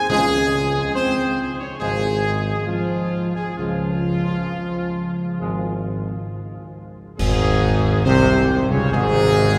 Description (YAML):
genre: classical, ceremonial fanfare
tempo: 64-71 BPM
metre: 4/4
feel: straight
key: Db major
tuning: A4 = 440 Hz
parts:
  - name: clear trumpet section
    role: melody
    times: 0.0-9.6 s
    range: F4 to Db5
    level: -26 LUFS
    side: equal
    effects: none
  - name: mellow French horn section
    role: sustained chords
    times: 0.0-9.6 s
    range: F3 to Db4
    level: -27 LUFS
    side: equal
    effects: none
  - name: clear trombone section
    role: sustained chords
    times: 0.1-9.6 s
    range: Ab2 to Ab3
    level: -30 LUFS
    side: equal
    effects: none
  - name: mellow tuba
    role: bass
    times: 0.1-9.6 s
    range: Ab1 to Db2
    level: -25 LUFS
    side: equal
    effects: none
  - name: timpani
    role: percussion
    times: 0.1-1.3 s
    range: Db3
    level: -35 LUFS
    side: equal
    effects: none
  - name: clash cymbals and concert bass drum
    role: percussion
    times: 7.2-8.9 s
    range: none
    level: -29 LUFS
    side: equal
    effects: none
room: wet cathedral reverb, RT60 6.3 s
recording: recorded in a church or concert hall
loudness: -20 LUFS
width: mono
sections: 0.0-7.2 A section; 7.2-9.6 A section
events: band accent 7.2-8.1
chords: 0.1 Db; 7.2 Db5/Ab